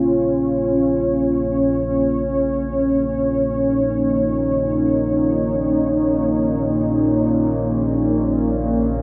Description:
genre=dark ambient drone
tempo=free time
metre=none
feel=none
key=Bb minor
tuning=A4 = 435 Hz
part: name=dark analog pad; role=sustained chords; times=0.0-9.0 s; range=Bb3 to Db5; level=-20 LUFS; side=equal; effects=chorus
part: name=analog drone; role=drone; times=0.0-9.0 s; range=Bb1 to Bb2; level=-28 LUFS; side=equal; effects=chorus
room=wet cathedral reverb, RT60 5.8 s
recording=none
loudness=-19 LUFS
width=mono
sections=0.0-9.0 A section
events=fade-in on synth drone 0.0-9.0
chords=0.0 Bbm

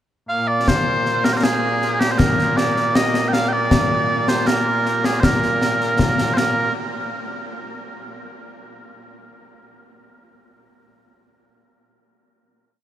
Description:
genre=scottish traditional, Scottish pipe music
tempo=79 BPM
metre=2/4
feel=straight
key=Bb mixolydian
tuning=A4 = 440 Hz
part: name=mellow small bagpipes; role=melody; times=0.3-6.7 s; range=Bb2 to G5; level=-19 LUFS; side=right 1 dB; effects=none
part: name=concert snare drum and concert bass drum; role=drums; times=0.7-6.7 s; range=none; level=-20 LUFS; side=left 1 dB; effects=none
room=wet huge ambient reverb, RT60 8.1 s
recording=heard from further back in the room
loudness=-16 LUFS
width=side -11 dB against mid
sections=0.0-0.7 pickup bar; 0.7-6.8 A section; 6.8-8.3 final hit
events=none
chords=none

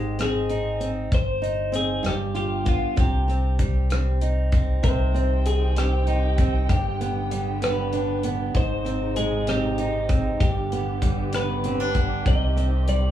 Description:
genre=six-eight pop ballad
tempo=65 BPM (dotted quarters)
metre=6/8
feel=straight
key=C harmonic minor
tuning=A4 = 440 Hz
part: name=twelve-string electric guitar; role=melody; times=0.0-13.1 s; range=F4 to Eb5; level=-29 LUFS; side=left 2 dB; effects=spring reverb
part: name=picked steel-string acoustic guitar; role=accompaniment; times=0.0-13.1 s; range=G2 to F4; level=-27 LUFS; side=right 3 dB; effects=none
part: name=fingered electric bass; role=bass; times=0.0-13.1 s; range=G1 to C2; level=-25 LUFS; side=equal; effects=none
part: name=damped 70s drum kit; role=drums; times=0.2-13.0 s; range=hi-hat, kick drum, rim click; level=-24 LUFS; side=left 1 dB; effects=none
part: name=muted studio string section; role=sustained chords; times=4.8-13.1 s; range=C3 to G5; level=-33 LUFS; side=right 1 dB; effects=none
room=moderate studio ambience, RT60 0.5 s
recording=band playing live in one room, small room ambience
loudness=-21 LUFS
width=side -11 dB against mid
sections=0.0-13.1 A section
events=none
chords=0.0 Ab; 1.1 Cm/G; 2.0 G7; 3.0 Cm; 6.7 G; 8.5 Ab; 10.4 G; 12.3 Cm

